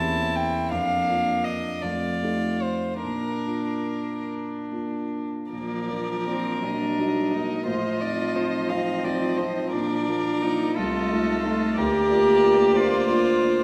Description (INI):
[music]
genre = classical, slow romantic movement for piano quintet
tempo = 47-62 BPM (dotted quarters)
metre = 6/8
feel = rubato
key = Bb major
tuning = A4 = 444 Hz
[part]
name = rich violin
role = melody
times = 0.0-13.6 s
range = A4 to A5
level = -31 LUFS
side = equal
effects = none
[part]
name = rich violin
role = second line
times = 0.0-13.6 s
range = D4 to Eb5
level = -35 LUFS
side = equal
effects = none
[part]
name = warm cello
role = second line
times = 0.0-13.6 s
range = A3 to G4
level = -28 LUFS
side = equal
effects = none
[part]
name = dark concert grand piano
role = accompaniment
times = 0.0-13.6 s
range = C2 to G4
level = -30 LUFS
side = equal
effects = none
[part]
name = warm viola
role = accompaniment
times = 5.5-13.6 s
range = F3 to Bb3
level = -34 LUFS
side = equal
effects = none
[sound]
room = wet recital hall reverb, RT60 1.4 s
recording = none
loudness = -24 LUFS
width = mono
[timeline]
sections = 0.0-5.5 A section; 5.5-13.6 B section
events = none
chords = 0.0 Edim7; 0.7 Bb/F; 1.8 F9; 3.0 Bb; 6.6 Ebm/Bb; 7.7 F7/A; 9.7 Bb; 10.8 F7/C; 11.8 Bb/D